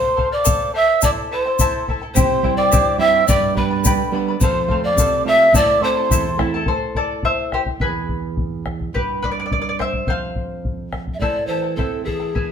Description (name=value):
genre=andean folk, Andean ensemble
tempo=106 BPM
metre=2/4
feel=straight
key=A minor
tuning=A4 = 439 Hz
part: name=mellow hollow pan flute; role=melody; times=0.0-6.4, 11.1-12.5 s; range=G#4 to E5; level=-18 LUFS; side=left 1 dB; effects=none
part: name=breathy quena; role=second line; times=0.0-6.4 s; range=B5 to E6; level=-23 LUFS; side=right 7 dB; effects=none
part: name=charango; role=accompaniment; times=0.0-12.5 s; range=E4 to B5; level=-24 LUFS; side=left 4 dB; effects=none
part: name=bombo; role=percussion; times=0.2-12.5 s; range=none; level=-22 LUFS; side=left 1 dB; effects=none
part: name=tube shaker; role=percussion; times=0.5-6.2 s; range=none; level=-24 LUFS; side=left 4 dB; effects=none
part: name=flamenco guitar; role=accompaniment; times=2.2-12.5 s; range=E2 to F4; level=-25 LUFS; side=right 7 dB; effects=none
room=wet stone room reverb, RT60 0.9 s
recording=band playing live in one room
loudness=-16 LUFS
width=side -8 dB against mid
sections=0.0-6.7 A section; 6.7-11.2 B section; 11.2-12.5 C section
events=charango solo 6.7-11.2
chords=0.0 F; 1.0 Am; 2.1 C; 3.3 G; 4.4 F; 5.5 Am; 7.8 E; 8.9 G; 10.1 F5; 11.2 Am